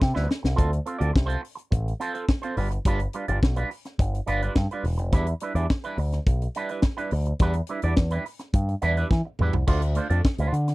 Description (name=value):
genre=disco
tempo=106 BPM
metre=4/4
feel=straight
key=D dorian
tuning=A4 = 440 Hz
part: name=electric guitar with an envelope filter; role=accompaniment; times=0.0-10.7 s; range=G3 to D5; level=-29 LUFS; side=right 4 dB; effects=phaser
part: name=picked electric bass with an envelope filter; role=bass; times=0.0-10.7 s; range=E1 to E3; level=-24 LUFS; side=equal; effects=none
part: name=tight funk drum kit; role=drums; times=0.0-10.7 s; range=crash cymbal, hi-hat, kick drum, snare drum, toms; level=-22 LUFS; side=equal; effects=none
room=little or no reverb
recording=dry, close 1970s-style studio recording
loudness=-22 LUFS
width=side -20 dB against mid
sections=0.6-9.7 A section; 9.7-10.7 B section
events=drum fill 0.0-0.6, 9.1-9.7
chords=0.0 Cmaj7; 0.6 Dm7; 2.6 G7; 4.8 Em7; 9.7 Dm7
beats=0.01 | 0.58 1.15 1.72 2.29 | 2.86 3.43 4.00 4.56 | 5.13 5.70 6.27 6.84 | 7.41 7.97 8.54 9.11 | 9.68 10.24